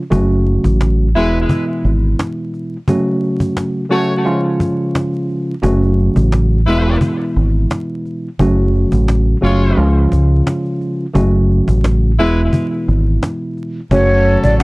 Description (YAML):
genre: hip hop, boom-bap hip-hop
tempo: 87 BPM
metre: 4/4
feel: swing 55% on 16ths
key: F# minor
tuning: A4 = 440 Hz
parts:
  - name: mellow tine electric piano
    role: accompaniment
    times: 0.0-14.6 s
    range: B2 to F#4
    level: -17 LUFS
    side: equal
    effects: medium stereo tremolo, high-pass filter, low-pass filter
  - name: deep dub fingered electric bass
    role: bass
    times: 0.1-14.6 s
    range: E1 to C#2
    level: -13 LUFS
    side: equal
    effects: tube saturation
  - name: cajon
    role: drums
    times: 0.1-14.6 s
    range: none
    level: -19 LUFS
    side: equal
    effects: none
  - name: warm horn section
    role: stabs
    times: 1.2-14.6 s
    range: F#3 to C#5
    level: -20 LUFS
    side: left 1 dB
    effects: high-pass filter, low-pass filter, analog delay
  - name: breathy mellow silver concert flute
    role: melody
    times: 13.9-14.6 s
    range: C#5 to F#5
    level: -14 LUFS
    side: equal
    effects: high-pass filter, low-pass filter
room: little or no reverb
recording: dry, gritty hardware recording, vinyl crackle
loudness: -12 LUFS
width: side -24 dB against mid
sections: 0.0-13.9 A section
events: none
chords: 0.1 F#m; 1.2 E; 2.9 F#m; 4.3 C#; 5.6 F#m; 6.7 E; 8.4 F#m; 9.8 C#; 11.2 F#m; 12.2 E; 13.9 F#m